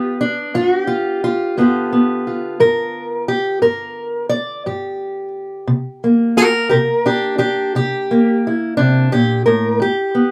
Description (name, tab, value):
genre	acoustic country blues, solo or duo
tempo	58 BPM (dotted quarters)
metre	12/8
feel	straight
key	unclear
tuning	A4 = 440 Hz
part	fingerpicked steel-string acoustic guitar	solo	0.0-10.3 s	G2 to D5	-17 LUFS	equal	none
room	wet booth ambience, RT60 0.2 s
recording	none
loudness	-17 LUFS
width	mono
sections	0.0-1.6 A section; 1.6-10.3 B section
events	steel-string acoustic guitar solo 1.6-10.3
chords	0.0 G7; 5.7 C7(no3); 9.8 G